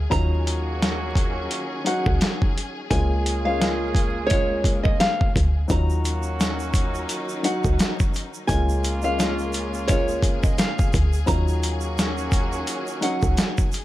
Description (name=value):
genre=hip hop, boom-bap hip-hop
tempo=86 BPM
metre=4/4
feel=swing 56% on 16ths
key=Eb minor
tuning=A4 = 439 Hz
part: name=warm studio string section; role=sustained chords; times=0.0-13.8 s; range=Db3 to Ab4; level=-34 LUFS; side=left 1 dB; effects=high-pass filter, low-pass filter
part: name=woody FM bass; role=bass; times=0.0-13.4 s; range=Db2 to Eb2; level=-25 LUFS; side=equal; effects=none
part: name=nylon-string guitar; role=melody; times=0.1-13.5 s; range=Db5 to Bb5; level=-28 LUFS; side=right 1 dB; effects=high-pass filter, low-pass filter, ping-pong delay
part: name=dark upright piano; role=accompaniment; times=0.1-13.7 s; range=Gb3 to Gb4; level=-29 LUFS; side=left 2 dB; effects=cassette tape, high-pass filter, low-pass filter
part: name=warm horn section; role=stabs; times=0.1-13.7 s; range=Bb3 to Ab4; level=-33 LUFS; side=right 2 dB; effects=high-pass filter, low-pass filter, ping-pong delay
part: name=dusty soul sampler-style drum kit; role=drums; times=0.1-13.8 s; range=hi-hat, kick drum, snare drum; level=-22 LUFS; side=equal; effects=overdrive
part: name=tube shaker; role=percussion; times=5.7-13.8 s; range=none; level=-40 LUFS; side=right 8 dB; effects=none
room=small room ambience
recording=vinyl crackle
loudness=-20 LUFS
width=side -15 dB against mid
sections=0.0-13.8 A section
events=none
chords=0.1 Ebm9; 2.9 Bbm7/Db; 5.7 Ebm9; 8.5 Bbm7/Db; 11.3 Ebm9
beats=| 0.12 0.81 1.51 2.21 | 2.91 3.60 4.30 5.00 | 5.70 6.40 7.09 7.79 | 8.49 9.19 9.88 10.58 | 11.28 11.98 12.68 13.37